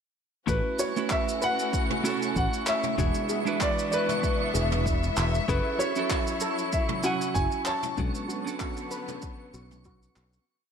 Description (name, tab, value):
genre	sunset chillout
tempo	96 BPM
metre	4/4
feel	swing 55% on 16ths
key	A major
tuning	A4 = 440 Hz
part	warm concert grand piano	melody	0.5-9.8 s	B4 to A5	-31 LUFS	right 1 dB	tape echo
part	semi-hollow electric guitar	accompaniment	0.5-10.5 s	G#3 to G#5	-32 LUFS	moving between left 8 dB and right 6 dB	auto-pan, low-pass filter, tape echo
part	warm symphonic string section	sustained chords	0.5-10.5 s	D3 to E5	-34 LUFS	left 1 dB	none
part	fingered electric bass	bass	0.5-10.4 s	E1 to B1	-28 LUFS	equal	none
part	electronic kick drum	drums	0.5-10.0 s	none	-31 LUFS	equal	overdrive
part	jazz brush drum kit	drums	0.5-10.4 s	handclaps, shaker, toms	-34 LUFS	right 1 dB	none
part	twinkling granular texture	texture	0.8-10.5 s	C#6	-38 LUFS	right 2 dB	built-in reverb
part	steel pan	arpeggios	0.8-10.4 s	F#4 to E5	-37 LUFS	equal	tape echo
room	light reverb, small room ambience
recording	none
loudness	-25 LUFS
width	side -7 dB against mid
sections	0.5-10.5 groove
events	fade-out 7.1-10.5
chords	0.5 A69; 3.0 E7; 5.5 F#m9; 8.0 Bm9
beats	| 0.48 1.11 1.73 2.36 | 2.98 3.61 4.23 4.86 | 5.48 6.11 6.73 7.36 | 7.98 8.61 9.23 9.86